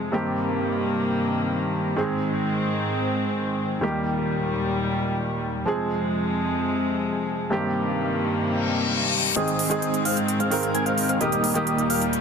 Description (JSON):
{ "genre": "EDM, festival progressive house", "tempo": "130 BPM", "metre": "4/4", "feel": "straight", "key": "Ab major", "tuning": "A4 = 440 Hz", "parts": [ { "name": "warm grand piano", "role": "accompaniment", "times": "0.0-12.2 s", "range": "G2 to Bb4", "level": "-25 LUFS", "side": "right 1 dB", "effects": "digital delay" }, { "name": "warm chamber string section", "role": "sustained chords", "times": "0.0-12.2 s", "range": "Eb2 to C4", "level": "-27 LUFS", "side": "left 2 dB", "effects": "low-pass filter" }, { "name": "reverse cymbal and riser", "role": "sound effects", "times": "8.6-12.2 s", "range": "none", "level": "-28 LUFS", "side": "left 6 dB", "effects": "none" }, { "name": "wide unison lead", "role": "arpeggios", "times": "9.4-12.0 s", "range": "Eb6 to Ab6", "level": "-27 LUFS", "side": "equal", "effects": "digital delay" }, { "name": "dense compressed supersaw", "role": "riff", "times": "9.4-12.0 s", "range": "G3 to Ab5", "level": "-28 LUFS", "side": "equal", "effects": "low-pass filter, digital delay" }, { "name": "electronic hi-hat", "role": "drums", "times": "9.4-12.2 s", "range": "none", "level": "-28 LUFS", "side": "right 2 dB", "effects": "high-pass filter on hats, low-pass filter on hats, high-pass filter on room, low-pass filter on room" } ], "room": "light reverb, digital ambience", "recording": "dense, heavily limited modern master", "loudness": "-22 LUFS", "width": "side -6 dB against mid", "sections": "0.0-9.4 A section; 9.4-12.2 B section", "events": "reverse cymbal 8.6-9.4; build-up 9.4-12.2; riser 9.4-12.2; filter sweep on supersaw synth 9.4-12.2", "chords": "0.1 Cm7/G; 2.0 Ab; 3.8 Eb; 5.7 Fm; 7.5 Cm7/G; 9.4 Ab; 11.2 Eb" }